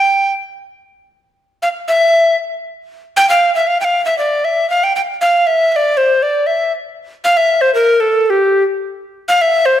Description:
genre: medieval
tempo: 118 BPM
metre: 2/4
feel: straight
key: G dorian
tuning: A4 = 440 Hz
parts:
  - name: breathy bright alto recorder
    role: solo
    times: 0.0-9.8 s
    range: G4 to G5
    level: -12 LUFS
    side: equal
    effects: none
room: wet recital hall reverb, RT60 1.5 s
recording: none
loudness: -12 LUFS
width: side -11 dB against mid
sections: 0.6-8.8 A section; 8.8-9.8 A section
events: none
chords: none

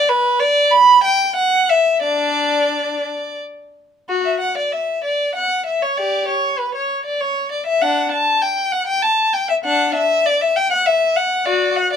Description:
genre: classical, baroque-style suite movement for unaccompanied violin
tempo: 84-101 BPM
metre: 3/4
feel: rubato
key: D major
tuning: A4 = 439 Hz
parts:
  - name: rich violin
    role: solo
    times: 0.0-12.0 s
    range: D4 to B5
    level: -15 LUFS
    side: left 1 dB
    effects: none
room: light reverb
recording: minimal, uncompressed stereo recording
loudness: -15 LUFS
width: side -8 dB against mid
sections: 0.0-4.1 A section; 4.1-12.0 A section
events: none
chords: none

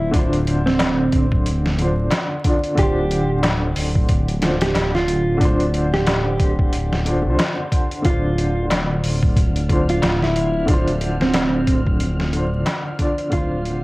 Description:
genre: trip hop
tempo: 91 BPM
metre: 4/4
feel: swing 58% on 16ths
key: D minor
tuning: A4 = 440 Hz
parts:
  - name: mellow electric guitar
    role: melody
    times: 0.0-13.8 s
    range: C4 to G4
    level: -23 LUFS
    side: right 1 dB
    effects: cassette tape, dub echo
  - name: dark upright piano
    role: accompaniment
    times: 0.0-13.8 s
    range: D3 to D5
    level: -23 LUFS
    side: equal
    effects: tremolo, vintage 12-bit sampler grit, cassette tape, tape echo
  - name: dark detuned saw bass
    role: bass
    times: 0.0-13.8 s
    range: D1 to C2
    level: -21 LUFS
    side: equal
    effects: tube saturation
  - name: trip hop sampler-style drum kit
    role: drums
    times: 0.1-13.8 s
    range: hi-hat, kick drum, snare drum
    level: -20 LUFS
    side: equal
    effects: cassette tape
  - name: darbuka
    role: percussion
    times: 0.8-12.8 s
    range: none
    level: -26 LUFS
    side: left 1 dB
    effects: none
  - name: wind-like tuned noise texture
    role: texture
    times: 9.0-13.8 s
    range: F3 to F6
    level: -36 LUFS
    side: equal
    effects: built-in reverb, cassette tape
room: light reverb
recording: home recording on cassette, vinyl crackle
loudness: -16 LUFS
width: side -20 dB against mid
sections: 0.0-13.8 A section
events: fade-out 11.6-13.8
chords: 0.0 Dm7

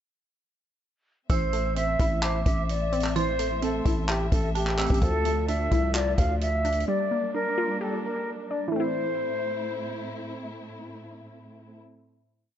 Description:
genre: hip hop, trap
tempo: 129 BPM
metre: 4/4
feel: half-time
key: A phrygian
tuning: A4 = 440 Hz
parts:
  - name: mellow silver concert flute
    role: melody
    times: 1.3-10.1 s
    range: G4 to F5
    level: -28 LUFS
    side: equal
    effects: low-pass filter, analog delay
  - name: dark detuned synth bell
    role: second line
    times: 1.3-5.0 s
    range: A5 to E6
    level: -36 LUFS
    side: right 3 dB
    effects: chorus, tremolo, analog delay
  - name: warbly dusty pluck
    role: accompaniment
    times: 1.3-11.8 s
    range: E3 to E5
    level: -32 LUFS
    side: equal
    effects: chorus, low-pass filter, analog delay
  - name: dark symphonic string section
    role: sustained chords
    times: 1.3-11.8 s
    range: A2 to E5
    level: -37 LUFS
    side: equal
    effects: none
  - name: growling 808-style bass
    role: bass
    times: 1.3-6.8 s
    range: A1 to D2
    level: -28 LUFS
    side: equal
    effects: none
  - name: vintage drum kit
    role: drums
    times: 1.3-6.9 s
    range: handclaps, hi-hat, kick drum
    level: -28 LUFS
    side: equal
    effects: none
room: moderate spring reverb, RT60 1.2 s, studio reverb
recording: echo-heavy mix, nothing above 7.8 kHz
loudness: -24 LUFS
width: side -10 dB against mid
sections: 1.3-8.7 hook; 8.7-12.5 final chord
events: none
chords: 1.3 Am; 5.0 Dmadd9; 6.9 Bb6; 8.7 Am

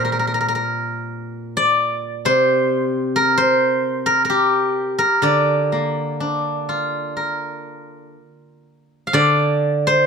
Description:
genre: chinese traditional, Chinese solo plucked strings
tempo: 60-67 BPM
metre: 4/4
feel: rubato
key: D jue mode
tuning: A4 = 440 Hz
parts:
  - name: steel-string zither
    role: solo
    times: 0.0-10.1 s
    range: Bb2 to F5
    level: -16 LUFS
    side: equal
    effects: none
room: light reverb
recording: dark, warm production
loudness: -16 LUFS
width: side -6 dB against mid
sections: 0.0-9.2 A section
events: none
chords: none

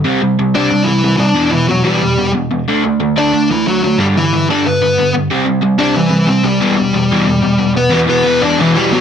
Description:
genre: punk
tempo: 183 BPM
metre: 4/4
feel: straight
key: E minor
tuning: A4 = 440 Hz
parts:
  - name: crunchy overdriven guitar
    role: riff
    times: 0.0-9.0 s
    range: E2 to D4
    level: -13 LUFS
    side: right 1 dB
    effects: none
  - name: dark smooth lead guitar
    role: melody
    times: 0.5-9.0 s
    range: E3 to D5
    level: -13 LUFS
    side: left 2 dB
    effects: overdrive
room: moderate studio reverb, RT60 0.7 s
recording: dense, heavily limited modern master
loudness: -11 LUFS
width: side -8 dB against mid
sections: 0.0-7.9 A section; 7.9-9.0 B section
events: none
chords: 0.1 C; 1.4 Em; 2.7 D; 4.0 G; 5.3 C; 6.6 Em

